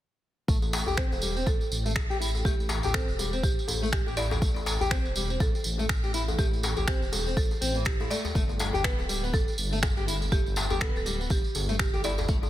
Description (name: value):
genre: afro house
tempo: 122 BPM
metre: 4/4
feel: swing 58% on 16ths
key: A minor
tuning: A4 = 440 Hz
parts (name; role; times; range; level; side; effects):
- nylon-string guitar; arpeggios; 0.5-12.4 s; E3 to G4; -34 LUFS; left 2 dB; sidechain pumping, low-pass filter, ping-pong delay
- dark detuned saw bass; bass; 0.5-12.5 s; D1 to A2; -32 LUFS; equal; tube saturation, sidechain pumping
- electronic kick drum; drums; 0.5-12.4 s; none; -27 LUFS; equal; none
- tambourine; percussion; 0.5-12.5 s; none; -34 LUFS; right 2 dB; none
- djembe; percussion; 0.6-12.5 s; none; -36 LUFS; left 3 dB; none
- buzzing marimba with medium hard mallets; melody; 1.0-12.5 s; G4 to D5; -36 LUFS; right 3 dB; ping-pong delay
- electronic finger snaps; drums; 1.0-11.9 s; none; -34 LUFS; right 1 dB; soft clipping on snare
room: light reverb, small room ambience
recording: dense, heavily limited modern master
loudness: -25 LUFS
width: side -13 dB against mid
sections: 0.5-12.5 A section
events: filter sweep on nylon-string guitar 0.5-12.5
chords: 0.5 Am7; 8.4 G5